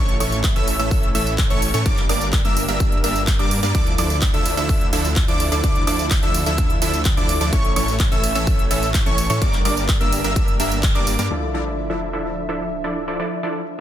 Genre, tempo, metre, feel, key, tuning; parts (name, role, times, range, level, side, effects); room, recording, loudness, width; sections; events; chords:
EDM, festival progressive house; 127 BPM; 4/4; straight; D harmonic minor; A4 = 441 Hz
lush unison pad; sustained chords; 0.0-13.8 s; F3 to E5; -29 LUFS; equal; chorus, sidechain pumping
plucky unison lead; arpeggios; 0.0-11.3 s; C#6 to E6; -26 LUFS; equal; vintage 12-bit sampler grit, sidechain pumping, ping-pong delay
supersaw stab; riff; 0.0-13.6 s; E3 to E5; -24 LUFS; right 1 dB; sidechain pumping, low-pass filter, ping-pong delay
detuned saw bass; bass; 0.0-11.3 s; G1 to A2; -25 LUFS; equal; sidechain pumping
pop drum kit; drums; 0.1-13.8 s; crash cymbal, handclaps, hi-hat, ride cymbal, tambourine, woodblock; -26 LUFS; right 2 dB; low-pass filter on hats, studio reverb, low-pass filter on cymbals, low-pass filter on perc, low-pass filter on snare
electronic kick drum; drums; 0.4-10.9 s; -20 LUFS; equal; studio reverb
warm baby grand piano; accompaniment; 11.3-13.8 s; D3 to D5; -32 LUFS; left 3 dB; vintage 12-bit sampler grit, sidechain pumping, ping-pong delay
sub drop; sound effects; 11.3-13.2 s; -31 LUFS; equal
light reverb; dense, heavily limited modern master; -17 LUFS; side -11 dB against mid
0.0-11.3 A section; 11.3-13.8 B section
drop 0.0-11.3; band accent 10.8; impact 11.3-13.2
0.0 A; 1.9 Gm; 3.7 Dmadd9; 7.5 A; 9.4 Gm; 11.3 Dmadd9